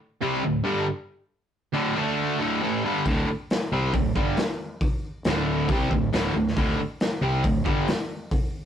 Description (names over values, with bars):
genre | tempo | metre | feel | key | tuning
hard rock | 137 BPM | 4/4 | straight | unclear | A4 = 440 Hz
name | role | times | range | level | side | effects
cranked stack guitar | riff | 0.2-7.9 s | D2 to D4 | -24 LUFS | right 1 dB | overdrive
fuzz fingered electric bass | bass | 3.1-7.9 s | D1 to C2 | -28 LUFS | equal | overdrive
raw garage drum kit | drums | 3.1-8.4 s | hi-hat, kick drum, snare drum | -26 LUFS | equal | none
room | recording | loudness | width
light reverb | rough rehearsal-room recording, warm saturation | -22 LUFS | side -9 dB against mid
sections
0.0-8.7 A section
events
none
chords
0.0 D5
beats
0.42 0.86 | 1.30 1.74 2.18 2.62 | 3.06 3.49 3.93 4.37 | 4.81 5.25 5.68 6.12 | 6.56 7.00 7.44 7.88 | 8.31